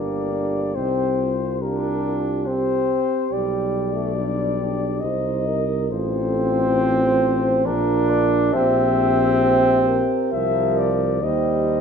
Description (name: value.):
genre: classical, hymn-like piece for brass band.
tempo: 69 BPM.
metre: 3/4.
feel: rubato.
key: unclear.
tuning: A4 = 440 Hz.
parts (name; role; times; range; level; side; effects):
dark cornet; melody; 0.0-11.8 s; Bb4 to E5; -26 LUFS; left 10 dB; none.
dark French horn section; second line; 0.0-11.8 s; F4 to C5; -26 LUFS; right 10 dB; none.
mellow trombone; accompaniment; 0.0-11.8 s; F3 to D4; -22 LUFS; equal; none.
warm euphonium; accompaniment; 0.0-11.8 s; D4 to G4; -29 LUFS; equal; none.
mellow tuba; bass; 0.0-11.8 s; G1 to Eb2; -25 LUFS; equal; none.
room: moderate scoring stage reverb, RT60 1.6 s.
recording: minimal, uncompressed stereo recording.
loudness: -18 LUFS.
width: side -6 dB against mid.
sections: 0.0-11.8 A section.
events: none.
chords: 0.0 Gm; 0.8 Cm; 3.3 G/B; 5.0 Cm7; 5.9 F/A; 7.7 Bb; 8.5 C7/Bb; 11.2 Cm/Eb.